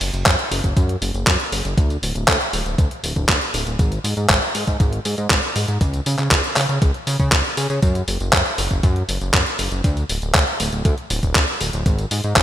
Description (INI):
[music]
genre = italo disco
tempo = 119 BPM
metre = 4/4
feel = straight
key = unclear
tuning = A4 = 439 Hz
[part]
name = chorused synth bass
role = bass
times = 0.0-12.4 s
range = D1 to C#3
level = -22 LUFS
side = equal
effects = none
[part]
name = clean 12-bit digital drum machine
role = drums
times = 0.0-12.4 s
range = handclaps, hi-hat, tambourine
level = -20 LUFS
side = equal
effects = studio reverb, gated reverb
[part]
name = electronic kick drum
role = drums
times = 0.3-12.4 s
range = none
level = -19 LUFS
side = equal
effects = studio reverb
[sound]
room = light reverb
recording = bright 1980s-style digital production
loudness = -17 LUFS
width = side -12 dB against mid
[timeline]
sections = 0.0-12.4 A section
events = none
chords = none